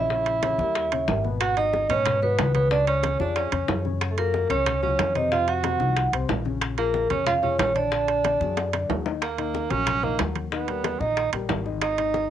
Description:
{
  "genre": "Afro-Cuban jazz",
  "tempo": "184 BPM",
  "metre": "4/4",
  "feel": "straight",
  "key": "Eb minor",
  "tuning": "A4 = 436 Hz",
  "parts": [
    { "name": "vibraphone with medium mallets", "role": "melody", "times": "0.0-8.9 s", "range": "A4 to Gb5", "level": "-24 LUFS", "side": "right 1 dB", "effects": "cassette tape" },
    { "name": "warm tenor saxophone", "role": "second line", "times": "0.0-12.3 s", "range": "A3 to Gb4", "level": "-28 LUFS", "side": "right 7 dB", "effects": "cassette tape" },
    { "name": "dark baby grand piano", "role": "accompaniment", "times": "0.0-12.3 s", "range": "Cb3 to Eb5", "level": "-32 LUFS", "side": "left 8 dB", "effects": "cassette tape" },
    { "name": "upright bass", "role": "bass", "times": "0.0-12.3 s", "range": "Ab1 to Ab2", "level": "-29 LUFS", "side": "equal", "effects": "none" },
    { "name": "bongos", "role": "percussion", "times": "0.1-12.3 s", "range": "none", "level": "-32 LUFS", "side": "left 10 dB", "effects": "none" },
    { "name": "congas", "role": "percussion", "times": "0.1-12.3 s", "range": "none", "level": "-36 LUFS", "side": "left 7 dB", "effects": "none" },
    { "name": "timbales", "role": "percussion", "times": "0.3-12.3 s", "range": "none", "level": "-30 LUFS", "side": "right 10 dB", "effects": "none" }
  ],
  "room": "light reverb",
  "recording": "home recording on cassette",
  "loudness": "-22 LUFS",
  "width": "side -10 dB against mid",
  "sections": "0.0-9.2 A section; 9.2-12.3 B section",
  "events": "drum fill 8.6-9.2; tenor saxophone solo 9.2-12.3",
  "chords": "0.1 Bbdim; 0.8 Eb7b9; 1.4 Abm7; 2.7 Db; 4.0 Gbmaj7; 5.3 F5; 6.6 Bbm7; 7.9 Bbaug7; 9.2 Ebm7; 10.5 Eb",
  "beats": "| 0.10 0.43 0.75 1.08 | 1.41 1.73 2.06 2.38 | 2.71 3.04 3.36 3.69 | 4.01 4.34 4.66 4.99 | 5.32 5.64 5.97 6.29 | 6.62 6.94 7.27 7.59 | 7.92 8.24 8.57 8.89 | 9.22 9.54 9.87 10.19 | 10.52 10.84 11.17 11.49 | 11.82 12.14"
}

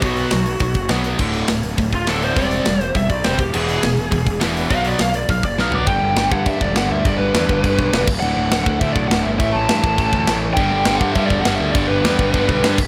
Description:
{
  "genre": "punk rock",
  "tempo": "205 BPM",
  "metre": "4/4",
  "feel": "straight",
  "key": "unclear",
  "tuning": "A4 = 441 Hz",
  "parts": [
    { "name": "lead guitar through a small cranked amp", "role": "melody", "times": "0.0-12.7 s", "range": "F4 to A5", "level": "-24 LUFS", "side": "equal", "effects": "overdrive" },
    { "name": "distorted electric guitar", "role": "riff", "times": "0.0-12.8 s", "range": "D2 to C4", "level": "-24 LUFS", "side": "equal", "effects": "distortion" },
    { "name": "tight distorted guitar", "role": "riff", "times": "0.0-5.9, 10.6-12.8 s", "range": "D2 to C4", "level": "-26 LUFS", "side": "equal", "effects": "distortion" },
    { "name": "fuzz picked electric bass", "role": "bass", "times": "0.0-12.9 s", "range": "D1 to G2", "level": "-26 LUFS", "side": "equal", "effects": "overdrive" },
    { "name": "tight metal drum kit", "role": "drums", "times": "0.0-12.8 s", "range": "crash cymbal, hi-hat, kick drum, snare drum, toms", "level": "-23 LUFS", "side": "equal", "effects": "none" }
  ],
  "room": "light reverb",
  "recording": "none",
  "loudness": "-18 LUFS",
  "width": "mono",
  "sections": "0.0-5.9 A section; 5.9-12.9 B section",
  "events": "lead electric guitar solo 0.0-5.9; drum fill 5.6",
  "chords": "0.0 B5; 1.2 D5; 2.4 C/E; 3.4 E; 4.7 B5; 5.9 G; 8.1 D; 9.4 A5; 10.6 G",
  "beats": "| 0.02 0.31 0.61 0.90 | 1.19 1.49 1.78 2.07 | 2.37 2.66 2.95 3.24 | 3.54 3.83 4.12 4.42 | 4.71 5.00 5.29 5.59 | 5.88 6.17 6.46 6.76 | 7.05 7.34 7.63 7.93 | 8.22 8.51 8.81 9.10 | 9.39 9.69 9.98 10.28 | 10.57 10.87 11.16 11.45 | 11.75 12.04 12.34 12.63"
}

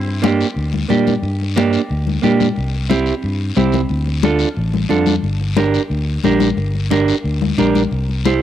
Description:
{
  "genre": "latin, cumbia",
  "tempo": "180 BPM",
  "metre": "4/4",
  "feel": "straight",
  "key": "G dorian",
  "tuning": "A4 = 441 Hz",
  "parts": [
    { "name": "fingered electric bass", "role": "bass", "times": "0.0-8.4 s", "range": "G1 to Bb2", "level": "-19 LUFS", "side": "equal", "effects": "none" },
    { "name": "congas", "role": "percussion", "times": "0.1-8.4 s", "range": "none", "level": "-19 LUFS", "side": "left 8 dB", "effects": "none" },
    { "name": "clean electric guitar", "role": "accompaniment", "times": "0.2-8.4 s", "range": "Bb3 to C5", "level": "-18 LUFS", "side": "right 5 dB", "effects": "cassette tape" },
    { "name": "guiro", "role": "percussion", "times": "0.2-8.4 s", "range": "none", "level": "-30 LUFS", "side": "left 8 dB", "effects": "none" }
  ],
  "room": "moderate spring reverb, RT60 2.4 s",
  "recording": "home recording on cassette",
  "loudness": "-14 LUFS",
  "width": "side -11 dB against mid",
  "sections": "0.0-8.4 A section",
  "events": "none",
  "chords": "0.0 Gm; 2.6 C; 3.9 Dm; 5.2 Gm; 7.9 C",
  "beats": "0.23 0.56 0.90 | 1.23 1.57 1.90 2.23 | 2.57 2.90 3.24 3.57 | 3.90 4.24 4.57 4.91 | 5.24 5.57 5.91 6.24 | 6.58 6.91 7.25 7.58 | 7.91 8.25"
}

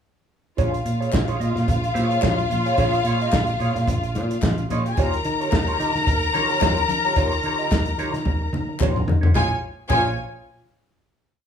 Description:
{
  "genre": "disco",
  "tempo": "110 BPM",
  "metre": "4/4",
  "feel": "swing 56% on 16ths",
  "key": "Bb dorian",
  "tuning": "A4 = 438 Hz",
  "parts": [
    { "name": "warm studio string section", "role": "second line", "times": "0.6-10.2 s", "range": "Eb4 to Bb5", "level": "-24 LUFS", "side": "left 3 dB", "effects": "none" },
    { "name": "mellow electric guitar", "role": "accompaniment", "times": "0.6-10.1 s", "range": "F4 to Eb5", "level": "-28 LUFS", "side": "right 3 dB", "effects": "wah" },
    { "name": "fingered electric bass", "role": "bass", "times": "0.6-10.2 s", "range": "Bb1 to Eb3", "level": "-25 LUFS", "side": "right 1 dB", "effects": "none" },
    { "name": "warm soul drum kit", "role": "drums", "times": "0.6-10.0 s", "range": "crash cymbal, hi-hat, kick drum, snare drum, toms", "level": "-23 LUFS", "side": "equal", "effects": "none" },
    { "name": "congas", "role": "percussion", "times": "0.6-10.2 s", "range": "none", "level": "-31 LUFS", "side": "left 5 dB", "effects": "none" },
    { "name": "group handclap", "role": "percussion", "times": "1.1-10.2 s", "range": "none", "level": "-37 LUFS", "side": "left 5 dB", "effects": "none" }
  ],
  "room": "moderate large studio reverb, RT60 0.9 s",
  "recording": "band playing live in one room, small room ambience",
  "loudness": "-19 LUFS",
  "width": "side -8 dB against mid",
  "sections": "0.6-9.3 groove; 9.3-11.5 final chord",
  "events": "drum fill 8.3-9.3",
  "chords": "0.6 Bbm7; 5.0 Eb9; 9.3 Bbm7",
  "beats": "| 0.58 1.13 1.68 2.23 | 2.78 3.33 3.88 4.42 | 4.97 5.52 6.07 6.62 | 7.16 7.71 8.26 8.80 | 9.35 9.90"
}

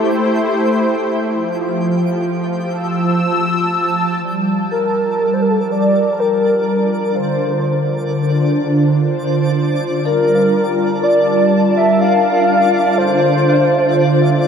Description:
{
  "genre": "ambient",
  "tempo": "62 BPM",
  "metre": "3/4",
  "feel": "straight",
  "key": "G dorian",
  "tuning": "A4 = 440 Hz",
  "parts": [
    { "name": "warm analog pad", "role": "sustained chords", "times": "0.0-14.5 s", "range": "D3 to E6", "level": "-16 LUFS", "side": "equal", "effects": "chorus" },
    { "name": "twinkling granular texture", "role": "texture", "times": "0.0-14.5 s", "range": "D4 to G5", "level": "-27 LUFS", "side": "left 1 dB", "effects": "built-in reverb" },
    { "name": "tine electric piano", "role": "arpeggios", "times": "4.2-14.5 s", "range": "A4 to G5", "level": "-30 LUFS", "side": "equal", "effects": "none" },
    { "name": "warm velvety synth lead", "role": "melody", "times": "4.7-14.4 s", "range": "A4 to F5", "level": "-16 LUFS", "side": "equal", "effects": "chorus, tape echo" }
  ],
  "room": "wet huge ambient reverb, RT60 8.5 s",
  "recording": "none",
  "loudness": "-13 LUFS",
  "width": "side -7 dB against mid",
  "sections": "0.0-4.2 A section; 4.2-14.5 B section",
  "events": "fade-in on synth texture 4.2-14.5; filter sweep on analog synth pad 4.2-14.5",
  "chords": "0.0 Am7; 1.3 Fmaj7; 4.2 Gm9; 7.2 Dm7; 10.1 Gm9; 13.0 Dm7",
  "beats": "0.38 | 1.34 2.31 3.28 | 4.25 5.21 6.18 | 7.15 8.12 9.09 | 10.05 11.02 11.99 | 12.96 13.93"
}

